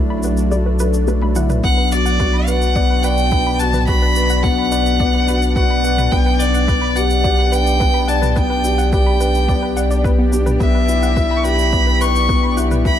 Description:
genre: piano and strings electronica.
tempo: 107 BPM.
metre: 4/4.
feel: straight.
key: B minor.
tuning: A4 = 440 Hz.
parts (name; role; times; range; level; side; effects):
lush unison pad; sustained chords; 0.0-13.0 s; B2 to G4; -24 LUFS; equal; chorus.
warbly dusty pluck; arpeggios; 0.0-12.9 s; B3 to B5; -29 LUFS; right 1 dB; chorus, sidechain pumping, ping-pong delay.
felt-muted upright piano; riff; 0.0-13.0 s; A3 to D5; -21 LUFS; left 3 dB; ping-pong delay.
round analog bass; bass; 0.0-13.0 s; B1; -19 LUFS; equal; sidechain pumping.
electronic shaker and toms; drums; 0.2-13.0 s; none; -28 LUFS; equal; none.
clear violin; melody; 1.6-13.0 s; D5 to C#6; -19 LUFS; equal; none.
electronic kick drum; drums; 1.6-13.0 s; none; -19 LUFS; equal; none.
room: little or no reverb.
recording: none.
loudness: -13 LUFS.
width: side -10 dB against mid.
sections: 0.0-13.0 A section.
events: kick drops out 0.5-1.6; drum fill 1.2-1.6.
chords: 0.0 Dadd9/B; 1.6 Bm; 6.1 G/B; 10.6 Em7/B.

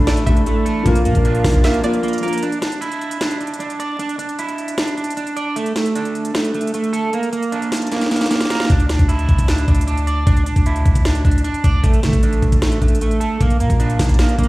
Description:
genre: hip hop, trap.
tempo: 153 BPM.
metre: 4/4.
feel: half-time.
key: D minor.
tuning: A4 = 440 Hz.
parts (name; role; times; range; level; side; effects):
felt-muted upright piano; accompaniment; 0.0-2.4 s; E3 to Bb4; -22 LUFS; left 4 dB; none.
warm woodwind section; sustained chords; 0.0-2.4 s; D4 to F5; -26 LUFS; equal; none.
electric guitar at the edge of break-up; arpeggios; 0.0-14.5 s; A3 to D5; -20 LUFS; right 2 dB; analog chorus, tape echo.
long sustained 808-style bass; bass; 0.0-1.6, 8.7-14.5 s; A1 to E3; -17 LUFS; equal; none.
string-like resonator pluck; second line; 0.1-2.0 s; D5 to E5; -29 LUFS; right 4 dB; chorus, tape echo.
trap drum kit; drums; 0.1-14.5 s; hi-hat, kick drum, snare drum; -18 LUFS; equal; none.
room: little or no reverb.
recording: played on a big sound system in a bare room, large studio reverb, vinyl crackle.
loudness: -15 LUFS.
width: side -19 dB against mid.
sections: 0.0-2.4 A section; 2.4-14.5 B section.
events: break 1.6-2.4, 2.4-8.7; drum fill 7.9-8.7.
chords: 0.0 Asus4; 0.9 Bb; 2.4 Dsus2; 5.6 Asus4; 7.1 Bb; 8.7 Dsus2; 11.8 Asus4; 13.4 Bb.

